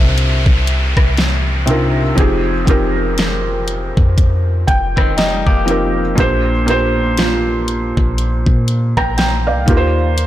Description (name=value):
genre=contemporary R&B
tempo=60 BPM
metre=4/4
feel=swing 58% on 16ths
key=Bb major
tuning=A4 = 440 Hz
part: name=felt-muted upright piano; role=accompaniment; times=0.0-10.3 s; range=Bb2 to Bb5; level=-17 LUFS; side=right 1 dB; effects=none
part: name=clean 808-style bass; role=bass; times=0.0-10.3 s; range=F1 to Bb2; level=-18 LUFS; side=equal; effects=none
part: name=downlifter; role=sound effects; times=0.0-6.2 s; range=none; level=-25 LUFS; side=equal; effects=none
part: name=smooth R&B drum kit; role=drums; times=0.2-10.3 s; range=hi-hat, kick drum, rim click, snare drum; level=-16 LUFS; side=equal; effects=none
part: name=handpan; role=texture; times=2.7-8.5 s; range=Eb4 to F4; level=-26 LUFS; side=right 3 dB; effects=ping-pong delay
part: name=clean electric guitar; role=arpeggios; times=5.0-6.1 s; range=Eb3 to G4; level=-21 LUFS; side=left 4 dB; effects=ping-pong delay
room=light reverb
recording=blown-out, overdriven recording, overdrive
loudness=-12 LUFS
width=side -13 dB against mid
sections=0.0-10.3 A section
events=felt piano fill 4.2-6.2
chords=0.0 Cm11; 2.2 Fm9; 6.2 Bb69; 9.7 Eb6